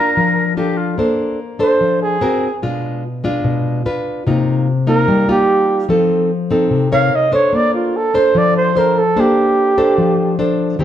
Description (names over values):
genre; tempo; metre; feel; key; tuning
bossa nova; 147 BPM; 4/4; straight; Bb major; A4 = 441 Hz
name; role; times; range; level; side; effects
breathy flugelhorn; melody; 0.0-10.4 s; F4 to F5; -15 LUFS; right 3 dB; none
reedy silver concert flute; second line; 0.0-1.0 s; F4 to Bb4; -18 LUFS; left 2 dB; none
nylon-string guitar; accompaniment; 0.0-10.8 s; B2 to Db5; -15 LUFS; left 1 dB; none
room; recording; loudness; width
moderate large studio reverb, RT60 1.1 s; band playing live in one room; -13 LUFS; side -10 dB against mid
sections
1.0-10.8 A section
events
flugelhorn solo 1.0-10.8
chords
0.0 Bbmaj7; 1.0 Bbmaj9; 2.2 Ab9; 2.6 Bdim7; 3.8 Dm6; 4.3 Cm7; 5.9 F7; 7.1 Cm13; 7.5 Bbmaj9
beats
0.16 0.57 | 0.98 1.39 1.80 2.21 | 2.62 3.02 3.43 3.84 | 4.25 4.66 5.07 5.48 | 5.89 6.29 6.70 7.11 | 7.52 7.93 8.34 8.75 | 9.15 9.56 9.97 10.38 | 10.79